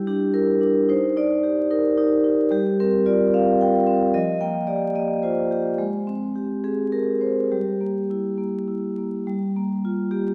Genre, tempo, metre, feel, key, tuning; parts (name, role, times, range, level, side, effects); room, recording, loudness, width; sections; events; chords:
classical, contemporary piece for solo vibraphone; 67-75 BPM (dotted quarters); 6/8; rubato; G minor; A4 = 440 Hz
vibraphone with medium hard mallets; solo; 0.0-10.3 s; F3 to G5; -22 LUFS; equal
wet recital hall reverb, RT60 1.6 s; heard from further back in the room, vinyl crackle; -22 LUFS; mono
0.0-9.3 A section; 9.3-10.3 A section
0.0 Gm6; 0.9 Ebmaj7; 2.5 G7sus4; 4.1 Fsus24; 5.8 Abmaj7; 7.5 Gm6; 9.3 Gm7